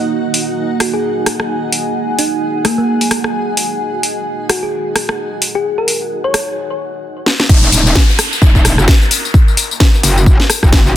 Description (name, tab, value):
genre	bass house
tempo	130 BPM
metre	4/4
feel	swing 58% on 16ths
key	Eb minor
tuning	A4 = 440 Hz
part	dark analog pad	sustained chords	0.0-11.0 s	Bb3 to Ab5	-22 LUFS	right 2 dB	chorus, phaser, sidechain pumping
part	granular cloud pad	texture	0.0-11.0 s	Eb4 to Gb5	-23 LUFS	equal	built-in reverb, sidechain pumping
part	garage drum kit	drums	0.3-10.9 s	crash cymbal, hi-hat, rim click, snare drum, tambourine	-15 LUFS	left 1 dB	soft clipping on snare
part	thumb-piano-like synth pluck	melody	0.8-6.7 s	Bb3 to Db5	-19 LUFS	equal	chorus, cassette tape, digital delay
part	metallic wobble bass	bass	7.5-11.0 s	Eb1 to Gb1	-13 LUFS	equal	distortion, chorus, overdrive, sidechain pumping
part	electronic kick drum	drums	7.5-10.8 s	none	-9 LUFS	equal	none
part	downlifter	sound effects	7.5-11.0 s	none	-20 LUFS	equal	none
room	light reverb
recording	dense, heavily limited modern master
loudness	-11 LUFS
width	side -12 dB against mid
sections	0.0-7.5 A section; 7.5-11.0 B section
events	drum fill 7.3; drop 7.5-11.0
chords	0.0 Ebm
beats	| 0.11 0.57 1.03 1.50 | 1.96 2.42 2.88 3.34 | 3.80 4.26 4.72 5.19 | 5.65 6.11 6.57 7.03 | 7.50 7.96 8.42 8.88 | 9.34 9.80 10.26 10.72